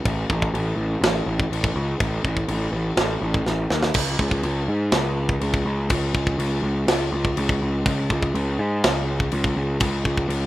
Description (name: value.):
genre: heavy metal.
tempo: 123 BPM.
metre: 4/4.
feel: straight.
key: unclear.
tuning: A4 = 438 Hz.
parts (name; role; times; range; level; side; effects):
fuzz picked electric bass; bass; 0.1-10.5 s; A1 to G#2; -22 LUFS; equal; overdrive.
tight metal drum kit; drums; 0.1-10.4 s; crash cymbal, kick drum, snare drum; -24 LUFS; equal; none.
room: little or no reverb.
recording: rough home demo mix.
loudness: -20 LUFS.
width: side -15 dB against mid.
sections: 0.0-4.0 A section; 4.0-10.5 B section.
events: drum fill 3.5-4.0.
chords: none.